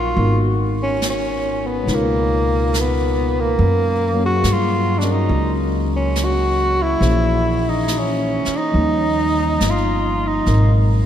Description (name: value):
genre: jazz ballad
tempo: 70 BPM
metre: 4/4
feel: swing 68% on 8ths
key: unclear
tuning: A4 = 440 Hz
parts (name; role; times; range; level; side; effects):
- breathy tenor saxophone; melody; 0.0-10.7 s; Bb3 to Gb4; -20 LUFS; equal; none
- barky tine electric piano; accompaniment; 0.0-11.1 s; Cb3 to F5; -23 LUFS; left 1 dB; none
- upright bass; bass; 0.0-11.1 s; G1 to G2; -19 LUFS; equal; none
- jazz brush drum kit; drums; 0.2-11.1 s; brushed snare drum, hi-hat, snare drum; -31 LUFS; right 1 dB; none
room: wet cathedral reverb, RT60 5.1 s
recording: in a vast, echoing space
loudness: -16 LUFS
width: side -10 dB against mid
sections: 0.0-11.1 A section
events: none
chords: 0.2 Abm9; 1.9 Db13; 3.6 Gb; 7.0 Bbm7b5; 8.7 Eb7; 10.5 Abm7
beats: | 0.16 1.02 1.88 2.73 | 3.58 4.44 5.30 6.16 | 7.01 7.88 8.74 9.61 | 10.47